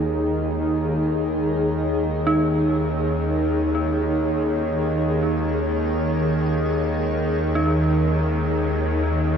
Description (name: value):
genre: dark ambient drone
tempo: free time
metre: none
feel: none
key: unclear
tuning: A4 = 440 Hz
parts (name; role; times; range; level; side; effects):
- granular cloud pad; sustained chords; 0.0-9.4 s; Eb4 to Db5; -24 LUFS; left 1 dB; built-in reverb
- bowed-like drone; drone; 0.0-9.4 s; Eb2 to Eb3; -22 LUFS; equal; built-in reverb
- dark detuned synth bell; arpeggios; 2.3-9.4 s; Eb4; -28 LUFS; right 2 dB; chorus, tremolo, ping-pong delay
room: wet huge ambient reverb, RT60 8.4 s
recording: nothing above 10.4 kHz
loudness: -19 LUFS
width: side -7 dB against mid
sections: 0.0-9.4 A section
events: none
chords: 0.0 Eb7sus4